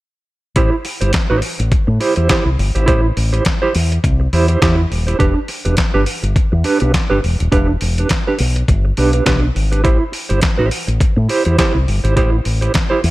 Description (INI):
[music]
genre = disco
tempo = 103 BPM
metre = 4/4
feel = swing 56% on 16ths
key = A minor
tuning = A4 = 442 Hz
[part]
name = mellow electric guitar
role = accompaniment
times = 0.6-13.1 s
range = D4 to C5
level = -18 LUFS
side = right 3 dB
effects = tremolo
[part]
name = fingered electric bass with an envelope filter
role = bass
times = 0.6-13.1 s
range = D#1 to A2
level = -15 LUFS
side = equal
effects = none
[part]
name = dusty soul sampler-style drum kit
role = drums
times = 0.6-13.1 s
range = handclaps, hi-hat, kick drum, snare drum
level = -17 LUFS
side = equal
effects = overdrive
[sound]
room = digital ambience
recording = none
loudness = -13 LUFS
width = side -18 dB against mid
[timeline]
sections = 0.6-13.1 A section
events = none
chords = 0.6 Am7; 5.2 Em7; 9.8 Am7